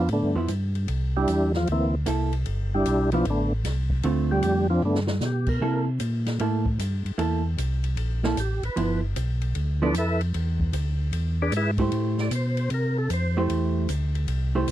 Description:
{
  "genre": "soul jazz organ trio",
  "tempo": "152 BPM",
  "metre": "4/4",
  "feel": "swing 66% on 8ths",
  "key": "G mixolydian",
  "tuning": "A4 = 437 Hz",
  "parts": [
    { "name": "percussive tonewheel organ", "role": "melody", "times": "0.0-5.8, 8.4-13.5 s", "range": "D3 to E5", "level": "-25 LUFS", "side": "equal", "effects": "slow rotary speaker, overdrive, chorus vibrato" },
    { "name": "mellow tonewheel organ", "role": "bass", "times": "0.0-14.7 s", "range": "G1 to C3", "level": "-25 LUFS", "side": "equal", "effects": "chorus vibrato, slow rotary speaker" },
    { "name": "open jazz drum kit", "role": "drums", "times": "0.1-14.7 s", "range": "crash cymbal, hi-hat, kick drum, ride cymbal, snare drum, toms", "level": "-35 LUFS", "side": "left 1 dB", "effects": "none" },
    { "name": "vintage hollow-body jazz guitar", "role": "accompaniment", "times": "0.4-14.7 s", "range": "D3 to C5", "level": "-26 LUFS", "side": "right 3 dB", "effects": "none" }
  ],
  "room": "little or no reverb",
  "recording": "dry, close 1970s-style studio recording",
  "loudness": "-22 LUFS",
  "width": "side -13 dB against mid",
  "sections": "0.0-14.7 A section",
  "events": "tonewheel organ solo 0.0-14.7; drum fill 4.8-5.2",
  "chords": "0.0 G13; 0.9 C13; 2.5 G13; 4.0 Dm7; 4.8 Gadd9; 5.6 C6; 8.8 G13; 10.3 E7; 11.9 Am7"
}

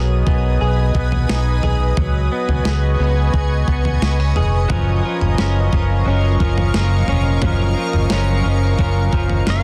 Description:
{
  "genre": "dream pop",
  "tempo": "88 BPM",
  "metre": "4/4",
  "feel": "straight",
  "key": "F# major",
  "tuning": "A4 = 440 Hz",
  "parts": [
    { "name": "shimmering ambient pad", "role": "sustained chords", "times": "0.0-9.6 s", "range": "A#4 to D#6", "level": "-27 LUFS", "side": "equal", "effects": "chorus, built-in reverb" },
    { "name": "direct-recorded clean electric guitar", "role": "arpeggios", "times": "0.0-9.6 s", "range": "E#3 to G#4", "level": "-27 LUFS", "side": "equal", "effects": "subtle chorus, delay" },
    { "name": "fingered electric bass", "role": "bass", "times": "0.0-9.6 s", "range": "E#1 to C#2", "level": "-19 LUFS", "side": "equal", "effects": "none" },
    { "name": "crisp 8-bit digital drum machine", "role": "drums", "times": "0.3-9.6 s", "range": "kick drum, snare drum, toms", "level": "-23 LUFS", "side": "equal", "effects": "none" },
    { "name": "electric guitar at the edge of break-up", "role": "accompaniment", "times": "4.7-9.6 s", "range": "F#3 to A#4", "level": "-28 LUFS", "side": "equal", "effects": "harmonic tremolo, subtle chorus" },
    { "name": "pedal steel guitar", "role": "melody", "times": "9.5-9.6 s", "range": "none", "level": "barely audible", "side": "none", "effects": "none" }
  ],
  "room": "little or no reverb",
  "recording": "dense, heavily limited modern master",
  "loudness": "-17 LUFS",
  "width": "mono",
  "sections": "0.0-9.6 A section",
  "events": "none",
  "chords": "0.0 B6; 2.0 C#7sus4; 4.7 F#maj7"
}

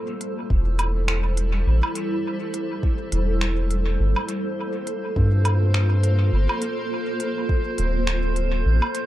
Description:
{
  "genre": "ambient dub",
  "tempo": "103 BPM",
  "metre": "4/4",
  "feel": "swing 58% on 16ths",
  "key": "G dorian",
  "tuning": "A4 = 441 Hz",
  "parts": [
    { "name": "granular cloud pad", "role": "sustained chords", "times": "0.0-9.1 s", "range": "G3 to C5", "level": "-27 LUFS", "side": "right 1 dB", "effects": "built-in reverb" },
    { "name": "organic electronic drum kit", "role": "drums", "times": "0.2-9.1 s", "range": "finger snaps, hi-hat, woodblock", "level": "-29 LUFS", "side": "equal", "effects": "dub echo" },
    { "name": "soft dub sub bass", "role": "bass", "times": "0.5-8.8 s", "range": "D1 to G2", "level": "-20 LUFS", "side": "equal", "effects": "none" },
    { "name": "electronic kick drum", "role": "drums", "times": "0.5-7.6 s", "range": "none", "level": "-22 LUFS", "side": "equal", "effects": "none" },
    { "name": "drifting glass-harmonics texture", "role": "texture", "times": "4.7-9.1 s", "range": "C5", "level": "-33 LUFS", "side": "left 1 dB", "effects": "chorus, built-in reverb" }
  ],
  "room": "digital ambience",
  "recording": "echo-heavy mix",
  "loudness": "-20 LUFS",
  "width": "side -14 dB against mid",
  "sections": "0.0-9.1 A section",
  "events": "none",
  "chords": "0.0 Am7; 4.0 Gm11"
}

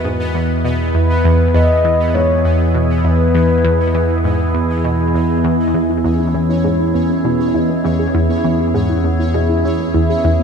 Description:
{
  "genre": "ambient",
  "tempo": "100 BPM",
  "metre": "4/4",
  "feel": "straight",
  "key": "unclear",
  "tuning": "A4 = 440 Hz",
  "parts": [
    { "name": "mellow horn-like synth lead", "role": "melody", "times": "0.0-10.4 s", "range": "B4 to F#5", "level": "-21 LUFS", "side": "left 1 dB", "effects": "chorus, ping-pong delay" },
    { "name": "evolving wavetable pad", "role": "sustained chords", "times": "0.0-10.4 s", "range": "E3 to G#4", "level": "-17 LUFS", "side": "equal", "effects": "chorus, built-in reverb" },
    { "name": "analog pluck", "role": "riff", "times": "0.0-10.4 s", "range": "E2 to E3", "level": "-19 LUFS", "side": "equal", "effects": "chorus, phaser, ping-pong delay" },
    { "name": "round analog bass", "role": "bass", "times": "0.0-10.4 s", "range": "E2", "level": "-19 LUFS", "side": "equal", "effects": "none" },
    { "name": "pulsing gated texture", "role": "texture", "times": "0.0-10.4 s", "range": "B3 to D#5", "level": "-26 LUFS", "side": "equal", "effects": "chorus, built-in reverb" },
    { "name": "soft round pluck", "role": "arpeggios", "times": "5.7-10.4 s", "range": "B3 to G#4", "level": "-24 LUFS", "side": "moving between left 8 dB and right 1 dB", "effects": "chorus, auto-pan, vintage 12-bit sampler grit, ping-pong delay" }
  ],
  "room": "wet plate reverb, RT60 3.5 s",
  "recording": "none",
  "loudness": "-13 LUFS",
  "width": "side -6 dB against mid",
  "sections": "0.0-10.4 A section",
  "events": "none",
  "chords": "0.0 E"
}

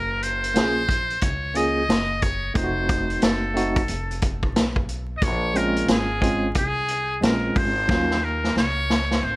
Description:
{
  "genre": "hip hop, jazz-hop",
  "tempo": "90 BPM",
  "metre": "4/4",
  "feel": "swing 62% on 16ths",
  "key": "unclear",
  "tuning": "A4 = 441 Hz",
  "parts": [
    { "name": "trumpet with metal mute", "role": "melody", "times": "0.0-9.4 s", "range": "Ab4 to Eb5", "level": "-25 LUFS", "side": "equal", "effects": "plate reverb, analog delay" },
    { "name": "upright bass", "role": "bass", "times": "0.0-9.4 s", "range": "F1 to Eb2", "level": "-29 LUFS", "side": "equal", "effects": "none" },
    { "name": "vintage drum kit", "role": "drums", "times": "0.2-9.2 s", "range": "hi-hat, kick drum, snare drum", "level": "-23 LUFS", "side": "equal", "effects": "vintage 12-bit sampler grit" },
    { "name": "barky tine electric piano", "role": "accompaniment", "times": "0.5-8.2 s", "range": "Gb3 to Ab4", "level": "-25 LUFS", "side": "right 1 dB", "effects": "fast tremolo, plate reverb" }
  ],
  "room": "moderate studio reverb, RT60 0.7 s",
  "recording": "vinyl crackle",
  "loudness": "-20 LUFS",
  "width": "side -22 dB against mid",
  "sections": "0.0-9.4 A section",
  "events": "drum fill 7.9-9.4",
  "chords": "0.0 Gbmaj9; 2.6 F7b9; 5.2 Bbm9; 7.9 Ebm7"
}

